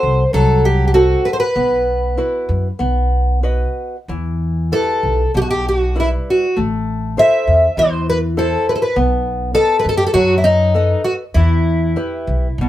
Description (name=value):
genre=fado-style ballad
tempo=98 BPM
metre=4/4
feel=uneven beats, rubato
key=E harmonic minor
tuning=A4 = 440 Hz
part: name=fingerpicked twelve-string acoustic guitar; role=melody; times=0.0-12.7 s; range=D#4 to E5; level=-15 LUFS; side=equal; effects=none
part: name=nylon-string guitar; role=accompaniment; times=0.0-12.7 s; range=B2 to D#5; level=-20 LUFS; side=left 2 dB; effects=none
part: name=upright bass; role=bass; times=0.0-12.7 s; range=A1 to F#2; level=-18 LUFS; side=equal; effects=none
room=moderate studio reverb, RT60 0.5 s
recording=band playing live in one room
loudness=-14 LUFS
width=side -13 dB against mid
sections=0.0-12.7 A section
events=none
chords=0.0 F#dim; 1.6 Bsus4; 2.8 B; 4.1 Em; 6.6 Am; 9.0 B7; 11.4 Em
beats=0.34 0.95 | 1.56 2.18 2.79 3.44 | 4.09 4.72 5.34 5.97 | 6.58 7.19 7.79 8.38 | 8.97 9.55 10.14 10.75 | 11.35 11.96 12.60